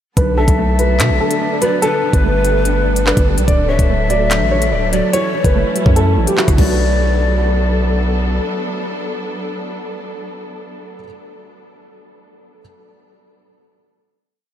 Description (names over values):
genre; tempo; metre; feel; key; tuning
hip hop, drill; 145 BPM; 4/4; half-time; B minor; A4 = 440 Hz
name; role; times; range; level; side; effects
dark baby grand piano; melody; 0.2-8.0 s; F#4 to D5; -20 LUFS; equal; none
felt-muted upright piano; accompaniment; 0.2-12.6 s; D3 to D5; -23 LUFS; right 3 dB; ensemble chorus
dark chamber string section; sustained chords; 0.2-10.9 s; F#3 to A4; -24 LUFS; left 2 dB; none
distorted 808-style bass; bass; 0.2-8.4 s; D1 to B2; -16 LUFS; equal; distortion
drill drum kit; drums; 0.2-6.7 s; crash cymbal, handclaps, hi-hat, kick drum, rim click; -18 LUFS; equal; none
breathy large pan pipes; second line; 0.4-8.0 s; B4 to E5; -23 LUFS; left 4 dB; ping-pong delay
room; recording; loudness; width
moderate huge ambient reverb, RT60 8.0 s; dreamy mix soaked in reverb; -13 LUFS; side -10 dB against mid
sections
0.2-6.8 hook; 6.8-10.1 final hit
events
none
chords
0.2 Bm7; 1.8 Gadd9; 3.5 D; 5.1 F#m7; 6.6 Bm7